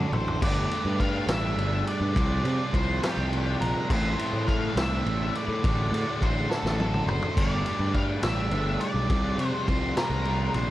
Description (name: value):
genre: indie rock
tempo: 69 BPM (dotted quarters)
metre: 6/8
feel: straight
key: unclear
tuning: A4 = 440 Hz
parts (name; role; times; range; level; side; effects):
- octave-fuzz lead guitar; melody; 0.0-10.7 s; G4 to F#5; -32 LUFS; equal; distortion
- overdriven electric guitar; riff; 0.0-10.7 s; A2 to A4; -35 LUFS; left 8 dB; spring reverb
- sludgy distorted guitar; riff; 0.0-10.7 s; A2 to G4; -32 LUFS; right 4 dB; overdrive, lush chorus
- fuzz picked electric bass; bass; 0.0-10.7 s; F#1 to C3; -28 LUFS; equal; overdrive
- vintage drum kit; drums; 0.1-10.7 s; crash cymbal, kick drum, ride cymbal, snare drum, toms; -29 LUFS; equal; none
room: little or no reverb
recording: dark, warm production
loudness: -24 LUFS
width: side -15 dB against mid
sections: 0.4-10.7 A section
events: drum fill 0.0-0.4, 6.5-7.4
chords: 0.4 Gsus2; 2.2 Csus4; 3.9 Am; 5.6 D7/A; 7.4 Gsus2; 9.1 Csus4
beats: | 0.43 1.30 | 2.17 3.03 | 3.90 4.77 | 5.64 6.50 | 7.37 8.24 | 9.10 9.97